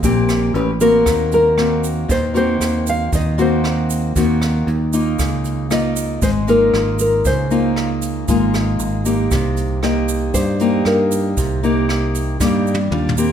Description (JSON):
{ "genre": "bossa nova", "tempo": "116 BPM", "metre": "4/4", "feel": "straight", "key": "unclear", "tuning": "A4 = 441 Hz", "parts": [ { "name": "nylon-string guitar", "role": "accompaniment", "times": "0.0-13.3 s", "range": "Bb2 to B4", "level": "-18 LUFS", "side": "left 1 dB", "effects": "none" }, { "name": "fingered electric bass", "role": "bass", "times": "0.0-13.3 s", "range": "Ab1 to G2", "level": "-21 LUFS", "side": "right 1 dB", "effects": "none" }, { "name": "jazz brush drum kit", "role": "drums", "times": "0.0-13.2 s", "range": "hi-hat, kick drum, rim click, snare drum, toms", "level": "-24 LUFS", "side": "right 1 dB", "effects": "none" }, { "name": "egg shaker", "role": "percussion", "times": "0.0-13.3 s", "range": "none", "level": "-31 LUFS", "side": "right 8 dB", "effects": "none" }, { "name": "nylon-string guitar", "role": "melody", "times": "0.8-12.9 s", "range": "Bb4 to F5", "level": "-18 LUFS", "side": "left 1 dB", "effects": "none" } ], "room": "light reverb", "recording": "none", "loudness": "-15 LUFS", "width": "side -9 dB against mid", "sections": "0.0-13.3 A section", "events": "drum fill 12.4-13.3", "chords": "0.0 Eb6 (rootless); 0.5 A9; 1.1 Ebm6; 5.2 Db69; 9.3 Cm7" }